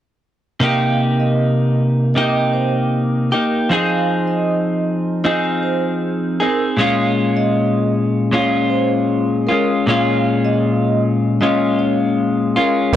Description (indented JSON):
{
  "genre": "indie pop",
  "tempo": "78 BPM",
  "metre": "4/4",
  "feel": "straight",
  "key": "unclear",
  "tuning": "A4 = 440 Hz",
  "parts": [
    { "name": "vibraphone with medium mallets", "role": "second line", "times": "0.6-12.7 s", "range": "Bb4 to F5", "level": "-28 LUFS", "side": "right 6 dB", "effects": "wide subtle chorus, tape echo" },
    { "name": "clean electric guitar", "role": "accompaniment", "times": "0.6-13.0 s", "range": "Bb2 to Ab4", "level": "-18 LUFS", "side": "left 2 dB", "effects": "lush chorus, vibrato effect" },
    { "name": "barky tine electric piano", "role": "accompaniment", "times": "12.9-13.0 s", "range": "Bb3", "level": "-14 LUFS", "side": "right 5 dB", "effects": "cassette tape" }
  ],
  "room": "light reverb",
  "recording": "dry, gritty hardware recording, cassette tape",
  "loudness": "-15 LUFS",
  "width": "side -11 dB against mid",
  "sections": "0.6-12.9 A section",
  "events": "none",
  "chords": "0.6 Cm7; 3.7 Fm7; 6.8 Bbm7",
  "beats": "| 0.62 1.39 2.16 2.93 | 3.70 4.47 5.25 6.02 | 6.79 7.56 8.33 9.10 | 9.87 10.64 11.41 12.18 | 12.95"
}